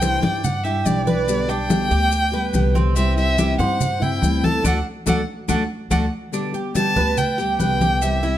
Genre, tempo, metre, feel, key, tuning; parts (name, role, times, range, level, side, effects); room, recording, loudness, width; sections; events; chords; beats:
latin, Cuban son and guajira; 142 BPM; 4/4; straight; G major; A4 = 440 Hz
warm violin; melody; 0.0-8.4 s; D5 to A5; -23 LUFS; equal
nylon-string guitar; accompaniment; 0.0-8.4 s; B2 to G4; -25 LUFS; left 2 dB
Cuban tres; arpeggios; 0.0-8.4 s; C4 to D5; -26 LUFS; right 5 dB
upright bass; bass; 0.0-8.4 s; B1 to G2; -23 LUFS; equal
congas; percussion; 0.0-8.4 s; -24 LUFS; left 1 dB
maracas; percussion; 0.0-8.4 s; -34 LUFS; left 10 dB
moderate large studio reverb, RT60 1.3 s; close, detailed microphones; -17 LUFS; side -12 dB against mid
0.0-6.3 A section; 6.3-8.4 B section
band accent 4.6-6.3
0.0 Cadd9; 1.3 G/B; 3.0 C; 4.6 D; 6.3 G
0.01 0.44 0.86 | 1.28 1.70 2.12 2.54 | 2.96 3.38 3.81 4.23 | 4.65 5.07 5.49 5.91 | 6.33 6.76 7.18 7.60 | 8.02